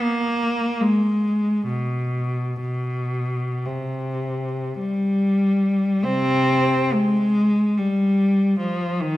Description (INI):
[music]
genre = classical, free, expressive piece for unaccompanied cello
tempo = 40-76 BPM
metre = 3/4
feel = rubato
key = unclear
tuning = A4 = 443 Hz
[part]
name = warm cello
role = solo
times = 0.0-9.2 s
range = B2 to C4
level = -19 LUFS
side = equal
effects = none
[sound]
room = wet recital hall reverb, RT60 1.6 s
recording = none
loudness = -19 LUFS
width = side -15 dB against mid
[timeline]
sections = 0.0-6.1 A section; 6.1-9.2 B section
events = none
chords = none